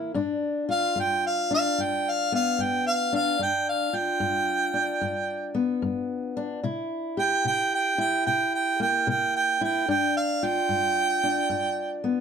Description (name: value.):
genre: acoustic country blues, solo or duo.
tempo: 74 BPM.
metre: 4/4.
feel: swing 66% on 8ths.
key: G mixolydian.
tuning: A4 = 440 Hz.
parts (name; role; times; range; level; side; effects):
fingerpicked steel-string acoustic guitar; accompaniment; 0.0-12.2 s; G2 to G4; -28 LUFS; left 3 dB; none.
warm harmonica; melody; 0.7-12.0 s; F5 to G5; -24 LUFS; right 3 dB; none.
room: light reverb.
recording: close, detailed microphones.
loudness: -23 LUFS.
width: side -7 dB against mid.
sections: 0.0-12.2 A section.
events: harmonica solo 0.0-12.2.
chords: 0.1 G7; 6.6 C7; 9.9 G7(no3).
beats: | 0.15 0.96 1.77 2.58 | 3.39 4.21 5.02 5.83 | 6.64 7.45 8.26 9.07 | 9.88 10.69 11.51.